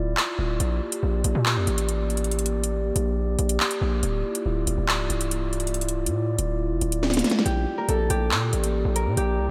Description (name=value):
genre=hip hop, drill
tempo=140 BPM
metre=4/4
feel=half-time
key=unclear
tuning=A4 = 441 Hz
part: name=glass harmonica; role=sustained chords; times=0.0-9.5 s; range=Bb3 to D5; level=-31 LUFS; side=equal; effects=none
part: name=distorted 808-style bass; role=bass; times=0.0-9.5 s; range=C1 to Bb2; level=-27 LUFS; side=equal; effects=distortion
part: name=drill drum kit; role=drums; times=0.2-9.3 s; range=handclaps, hi-hat, snare drum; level=-29 LUFS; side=equal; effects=overdrive
part: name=concert harp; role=melody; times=7.5-9.5 s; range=G4 to Bb4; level=-30 LUFS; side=equal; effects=low-pass filter, tape echo
room=moderate cathedral reverb, RT60 5.3 s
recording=dreamy mix soaked in reverb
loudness=-25 LUFS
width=mono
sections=0.0-7.5 A section; 7.5-9.5 B section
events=break 0.0-0.6; drum fill 7.0-7.5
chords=0.0 Dmadd9; 0.6 Bb6; 4.0 Dmadd9; 7.5 Bb6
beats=0.17 | 0.60 1.03 1.46 1.89 | 2.31 2.74 3.17 3.60 | 4.03 4.46 4.89 5.31 | 5.74 6.17 6.60 7.03 | 7.46 7.89 8.31 8.74 | 9.17